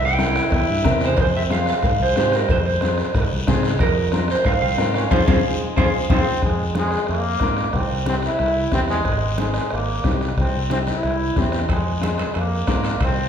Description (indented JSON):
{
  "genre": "latin, cumbia",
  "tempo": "183 BPM",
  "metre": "4/4",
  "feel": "straight",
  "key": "F harmonic minor",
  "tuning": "A4 = 441 Hz",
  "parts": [
    { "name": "clean electric guitar", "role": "melody", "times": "0.0-6.2 s", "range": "Ab4 to G5", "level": "-22 LUFS", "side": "right 3 dB", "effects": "spring reverb" },
    { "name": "bright trombone", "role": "second line", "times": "0.0-13.3 s", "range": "F3 to E4", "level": "-25 LUFS", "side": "equal", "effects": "none" },
    { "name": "fingered electric bass", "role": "bass", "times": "0.0-13.3 s", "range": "Ab1 to Ab2", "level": "-24 LUFS", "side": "equal", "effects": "none" },
    { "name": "warm upright piano", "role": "accompaniment", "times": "0.2-12.9 s", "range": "C4 to Bb4", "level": "-26 LUFS", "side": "left 4 dB", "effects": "none" },
    { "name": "bombo", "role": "percussion", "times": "0.2-13.2 s", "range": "none", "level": "-24 LUFS", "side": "equal", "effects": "none" },
    { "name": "congas", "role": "percussion", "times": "0.2-13.3 s", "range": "none", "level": "-29 LUFS", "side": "right 1 dB", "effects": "none" },
    { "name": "guiro", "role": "percussion", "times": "0.2-13.3 s", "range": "none", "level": "-35 LUFS", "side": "left 3 dB", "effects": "none" },
    { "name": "cowbell and timbales", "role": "percussion", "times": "0.5-6.2, 11.7-13.2 s", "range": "none", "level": "-32 LUFS", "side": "right 5 dB", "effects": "none" }
  ],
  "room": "wet recital hall reverb, RT60 1.4 s",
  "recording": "recorded in a church or concert hall",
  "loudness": "-17 LUFS",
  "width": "side -8 dB against mid",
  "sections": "0.0-6.4 A section; 6.4-13.3 B section",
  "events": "drum fill 5.1-6.4; band accent 5.1-6.4; trombone solo 6.4-13.3",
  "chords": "0.0 C7; 1.2 Fm; 7.7 C; 9.1 Ab; 10.4 C; 11.7 Fm"
}